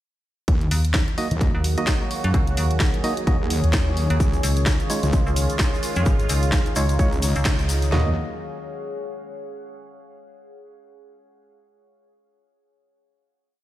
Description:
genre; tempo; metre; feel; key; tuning
bass house; 129 BPM; 4/4; swing 57% on 16ths; Eb minor; A4 = 441 Hz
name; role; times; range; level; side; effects
sweeping resonant pad; sustained chords; 0.5-8.1 s; Eb3 to Gb4; -30 LUFS; equal; chorus, sidechain pumping
wobble bass; bass; 0.5-8.1 s; Db2 to Eb2; -22 LUFS; equal; chorus, tube saturation, sidechain pumping
garage drum kit; drums; 0.5-7.9 s; hi-hat, snare drum; -28 LUFS; equal; none
house drum kit; drums; 0.5-8.0 s; kick drum, snare drum, toms; -21 LUFS; equal; none
deep dark ambient pad; texture; 1.7-9.7 s; Ab4 to Gb5; -32 LUFS; equal; chorus, built-in reverb, sidechain pumping
metallic FM bass; bass; 0.7-7.9 s; Ab1 to Gb2; -21 LUFS; equal; overdrive, sidechain pumping
percussive organ stab; stabs; 1.2-8.1 s; Ab3 to Eb5; -29 LUFS; right 2 dB; chorus, sidechain pumping, ping-pong delay
egg shaker; percussion; 4.2-7.9 s; none; -35 LUFS; left 4 dB; none
room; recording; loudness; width
little or no reverb; played on a big sound system in a bare room, stone room reverb; -19 LUFS; side -14 dB against mid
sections
0.5-7.9 drop; 7.9-9.8 final chord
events
drop 0.5-7.9; band accent 7.5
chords
0.5 Ebm; 4.2 Dbadd9; 7.9 Ebm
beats
| 0.48 0.94 1.41 1.88 | 2.34 2.81 3.27 3.74 | 4.20 4.67 5.13 5.60 | 6.06 6.53 6.99 7.46 | 7.92 8.39 8.85 9.32

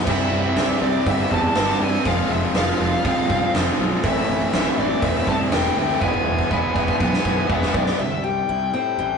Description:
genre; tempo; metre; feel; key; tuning
quiet-loud alternative rock; 121 BPM; 4/4; straight; C major; A4 = 440 Hz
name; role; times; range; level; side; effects
crunchy overdriven guitar; riff; 0.0-8.0 s; A2 to F4; -25 LUFS; left 3 dB; none
bluesy overdriven lead guitar; melody; 0.1-9.2 s; D5 to A5; -24 LUFS; left 3 dB; distortion
thick fuzz guitar; riff; 0.1-8.0 s; A2 to F4; -26 LUFS; right 4 dB; distortion
fuzz picked electric bass; bass; 0.1-9.2 s; E1 to A2; -26 LUFS; right 1 dB; overdrive
big rock drum kit; drums; 0.1-8.0 s; crash cymbal, hi-hat, kick drum, snare drum; -23 LUFS; right 1 dB; none
picked steel-string acoustic guitar; arpeggios; 8.0-9.2 s; C3 to E4; -29 LUFS; left 3 dB; none
room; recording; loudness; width
wet booth ambience, RT60 0.2 s; rough rehearsal-room recording, warm saturation, nothing above 10.6 kHz; -18 LUFS; side -6 dB against mid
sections
0.0-8.0 A section; 8.0-9.2 B section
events
drum fill 6.0-8.0; half time 8.0-9.2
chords
0.1 C; 2.1 Fm; 4.0 Am; 6.0 E; 8.0 C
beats
| 0.07 0.57 1.07 1.56 | 2.06 2.55 3.05 3.54 | 4.04 4.53 5.03 5.52 | 6.02 6.51 7.01 7.50 | 8.00 8.49 8.99

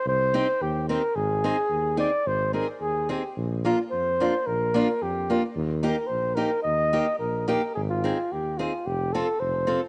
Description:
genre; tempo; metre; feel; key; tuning
alpine folk, alpine dance band; 109 BPM; 2/4; rubato; Eb major; A4 = 440 Hz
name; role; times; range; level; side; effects
mellow flugelhorn; melody; 0.0-9.8 s; F4 to Eb5; -28 LUFS; equal; none
mellow tuba; bass; 0.1-9.8 s; F1 to F2; -33 LUFS; equal; none
fingerpicked steel-string acoustic guitar; accompaniment; 0.3-9.8 s; Bb3 to A4; -30 LUFS; equal; none
room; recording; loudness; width
light reverb, studio reverb; home recording on cassette, nothing above 10.3 kHz; -26 LUFS; mono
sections
0.0-7.8 A section; 7.8-9.9 B section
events
none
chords
0.0 Cm; 1.2 Ab; 3.4 Bb; 5.6 Eb; 7.8 Ab; 8.9 F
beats
| 0.06 0.61 | 1.16 1.70 | 2.25 2.81 | 3.37 3.92 | 4.47 5.01 | 5.55 6.10 | 6.64 7.20 | 7.76 8.31 | 8.86 9.41

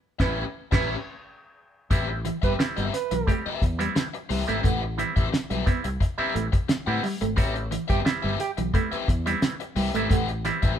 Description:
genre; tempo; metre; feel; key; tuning
funk; 88 BPM; 4/4; straight; unclear; A4 = 441 Hz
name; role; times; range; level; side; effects
bright trombone; second line; 0.2-3.4, 7.9-8.5 s; G4 to B4; -31 LUFS; right 8 dB; none
biting overdriven guitar; accompaniment; 0.2-10.7 s; C4 to F#5; -31 LUFS; left 5 dB; none
auto-wah clav; stabs; 0.2-10.7 s; G3 to G4; -30 LUFS; right 4 dB; overdrive
fingered electric bass; bass; 0.2-10.7 s; G1 to A2; -30 LUFS; equal; none
cloth-damped thuddy drum kit; drums; 0.2-10.8 s; crash cymbal, hi-hat, kick drum, snare drum; -25 LUFS; equal; none
mellow electric guitar; riff; 2.1-10.6 s; E3 to B3; -31 LUFS; right 3 dB; none
room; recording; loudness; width
light reverb; band playing live in one room; -23 LUFS; side -9 dB against mid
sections
0.0-1.9 A section; 1.9-10.8 B section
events
band accent 0.0-1.9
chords
0.0 A9; 1.9 Am9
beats
0.54 1.22 | 1.91 2.59 3.27 3.96 | 4.64 5.32 6.01 6.69 | 7.37 8.06 8.74 9.43 | 10.11

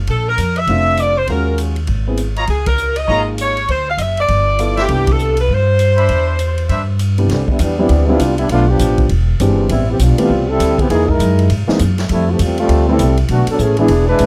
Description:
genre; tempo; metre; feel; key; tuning
jazz, big band swing; 200 BPM; 4/4; swing 62% on 8ths; C major; A4 = 441 Hz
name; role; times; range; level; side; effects
upright bass; bass; 0.0-14.3 s; E1 to G#2; -18 LUFS; equal; none
warm saxophone section; melody; 0.1-7.0 s; G4 to F5; -19 LUFS; equal; none
swinging big-band drum kit; drums; 0.1-14.3 s; hi-hat, kick drum, ride cymbal, snare drum; -26 LUFS; equal; none
warm grand piano; accompaniment; 0.7-14.3 s; C3 to A4; -21 LUFS; equal; none
mellow trumpet section; stabs; 2.4-6.8 s; D4 to B5; -22 LUFS; equal; none
mellow trombone section; second line; 7.3-14.3 s; D3 to B4; -18 LUFS; equal; none
room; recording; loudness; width
small room ambience; dry, close 1970s-style studio recording; -15 LUFS; mono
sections
0.0-7.3 A section; 7.3-14.3 B section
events
band accent 2.6, 5.0; trombone section solo 7.3-14.3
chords
0.1 Bbmaj7; 1.3 Ebm11; 1.9 Ab; 2.5 Db69; 3.7 D9; 4.3 G13; 4.9 Cmaj9; 8.5 Bm7b5; 9.1 E7alt; 9.7 Am9; 10.9 C7#9b13 (rootless); 12.1 Fmaj9; 13.3 Bm7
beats
| 0.07 0.37 0.68 0.97 | 1.28 1.58 1.88 2.18 | 2.48 2.78 3.08 3.38 | 3.68 3.98 4.29 4.59 | 4.89 5.19 5.49 5.79 | 6.09 6.39 6.69 6.99 | 7.29 7.59 7.89 8.20 | 8.49 8.79 9.10 9.39 | 9.70 9.99 10.29 10.59 | 10.89 11.19 11.49 11.79 | 12.09 12.39 12.69 12.99 | 13.29 13.59 13.89 14.19

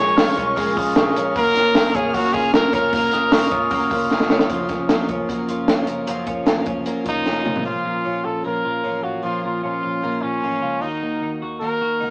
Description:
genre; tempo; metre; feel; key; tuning
jangly indie pop; 152 BPM; 4/4; straight; Bb harmonic minor from 7.7 s; A4 = 440 Hz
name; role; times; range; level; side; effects
clear trumpet; melody; 0.0-4.1, 7.1-12.1 s; Db4 to Db5; -24 LUFS; equal; none
picked twelve-string acoustic guitar; accompaniment; 0.0-12.1 s; Bb2 to Gb4; -32 LUFS; equal; none
warm studio string section; sustained chords; 0.0-4.5 s; Bb4 to F6; -32 LUFS; equal; none
twelve-string electric guitar; arpeggios; 0.0-12.1 s; Eb3 to Gb4; -27 LUFS; equal; none
vintage muted picked electric bass; bass; 0.0-12.1 s; Gb1 to Eb2; -40 LUFS; equal; none
glockenspiel with rubber mallets; second line; 0.2-4.5 s; Db6 to F6; -29 LUFS; equal; none
compact cocktail drum kit; drums; 0.2-7.6 s; hi-hat, kick drum, snare drum, toms; -23 LUFS; equal; none
room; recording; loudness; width
moderate small room reverb, RT60 0.5 s; rough rehearsal-room recording, small speaker sound; -20 LUFS; mono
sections
0.0-4.5 A section; 4.5-7.7 B section; 7.7-12.1 C section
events
drum fill 4.1-4.5, 7.3-7.7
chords
0.0 Bbm7; 1.4 Gbmaj7; 7.7 Bbm; 10.8 Ebm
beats
0.18 0.57 0.96 | 1.35 1.75 2.14 2.53 | 2.93 3.32 3.71 4.11 | 4.50 4.89 5.29 5.68 | 6.08 6.47 6.87 7.26 | 7.66 8.05 8.45 8.84 | 9.24 9.63 10.03 10.43 | 10.82 11.22 11.62 12.01

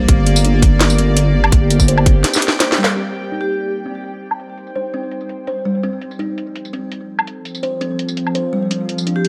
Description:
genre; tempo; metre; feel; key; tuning
half-time drum and bass; 167 BPM; 4/4; half-time; C dorian; A4 = 440 Hz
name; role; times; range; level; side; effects
bowed-like drone; sustained chords; 0.0-9.3 s; F3 to G5; -26 LUFS; equal; built-in reverb, vintage 12-bit sampler grit, sidechain pumping
kalimba; arpeggios; 0.0-9.2 s; G3 to C5; -26 LUFS; equal; low-pass filter, dub echo
deep soft wobble bass; bass; 0.0-2.2 s; G1; -16 LUFS; equal; chorus
pulsing gated texture; texture; 0.0-3.0 s; G4; -31 LUFS; equal; chorus, built-in reverb
drum and bass drum kit; drums; 0.1-9.3 s; hi-hat, snare drum, tambourine, woodblock; -20 LUFS; equal; low-pass filter on hats, low-pass filter on perc, low-pass filter on snare, low-pass filter on room
electronic kick drum; drums; 0.1-2.1 s; none; -14 LUFS; equal; none
vibraphone with medium hard mallets; melody; 3.4-3.7, 9.2-9.3 s; G4; -26 LUFS; equal; delay
room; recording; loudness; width
light reverb; none; -17 LUFS; mono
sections
0.0-3.0 A section; 3.0-9.3 B section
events
drop 0.0-3.0; drum fill 2.2-3.0; band accent 2.8; filter sweep on drum 3.0-9.3; filter sweep on synth drone 3.0-9.3; filter sweep on kalimba 3.0-9.3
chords
0.1 Gm; 3.0 Cm; 5.8 F; 8.7 Bb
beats
| 0.09 0.45 0.81 1.16 | 1.52 1.88 2.24 2.60 | 2.96 3.32 3.68 4.04 | 4.40 4.76 5.12 5.48 | 5.83 6.19 6.55 6.91 | 7.27 7.63 7.99 8.35 | 8.71 9.07

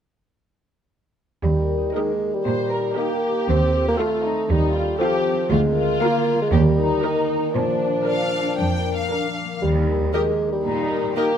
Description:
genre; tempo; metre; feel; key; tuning
cinematic; 118 BPM; 4/4; straight; Eb major; A4 = 439 Hz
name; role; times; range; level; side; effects
mellow bassoon; accompaniment; 1.4-11.4 s; Eb3 to C4; -22 LUFS; right 2 dB; none
concert harp; arpeggios; 1.4-11.4 s; Bb2 to Bb4; -27 LUFS; left 12 dB; none
rich studio cello section; bass; 1.4-11.1 s; D2 to Bb2; -22 LUFS; right 3 dB; none
warm studio viola section; accompaniment; 1.9-11.2 s; F4 to Bb4; -28 LUFS; right 2 dB; none
dark French horn section; sustained chords; 1.9-11.3 s; D4 to Bb4; -32 LUFS; left 5 dB; none
rich studio violin section; melody; 2.0-11.2 s; Eb5 to G5; -30 LUFS; left 4 dB; none
dark studio violin section; second line; 2.4-11.4 s; D4 to C5; -27 LUFS; left 2 dB; none
room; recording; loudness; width
light reverb; close, detailed microphones; -19 LUFS; side -8 dB against mid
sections
1.4-11.4 A section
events
none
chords
1.4 Eb; 3.5 F7/Eb; 5.5 Bb7/D; 6.5 Eb; 7.5 Bb; 9.6 Eb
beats
| 1.44 1.95 2.46 2.97 | 3.48 3.99 4.50 5.00 | 5.51 6.02 6.53 7.04 | 7.55 8.07 8.59 9.10 | 9.62 10.14 10.65 11.16

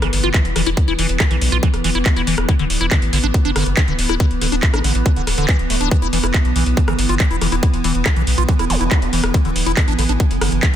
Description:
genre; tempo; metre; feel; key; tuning
psychedelic trance; 140 BPM; 4/4; straight; unclear; A4 = 440 Hz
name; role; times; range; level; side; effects
evolving wavetable pad; sustained chords; 0.0-10.8 s; E3 to B3; -23 LUFS; right 1 dB; chorus, built-in reverb, sidechain pumping
liquid acid bass; riff; 0.0-10.8 s; D3 to F4; -23 LUFS; moving between left 6 dB and right 6 dB; phaser, auto-pan, vintage 12-bit sampler grit, sidechain pumping, tape echo
round analog bass; bass; 0.0-10.8 s; D1 to B1; -20 LUFS; equal; none
drum and bass drum kit; drums; 0.0-10.8 s; handclaps, hi-hat, rim click; -22 LUFS; equal; none
sub drop and zap; sound effects; 0.2-0.8, 8.7-8.8 s; none; -29 LUFS; equal; none
electronic kick drum; drums; 0.3-10.7 s; none; -15 LUFS; equal; none
room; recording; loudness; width
digital ambience; dense, heavily limited modern master; -14 LUFS; side -10 dB against mid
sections
0.0-10.8 A section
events
impact 0.0-0.8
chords
0.0 E5; 2.5 D5; 5.9 E5; 9.3 D5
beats
0.34 | 0.77 1.20 1.63 2.06 | 2.49 2.91 3.34 3.77 | 4.20 4.63 5.06 5.49 | 5.91 6.34 6.77 7.20 | 7.63 8.06 8.49 8.91 | 9.34 9.77 10.20 10.63

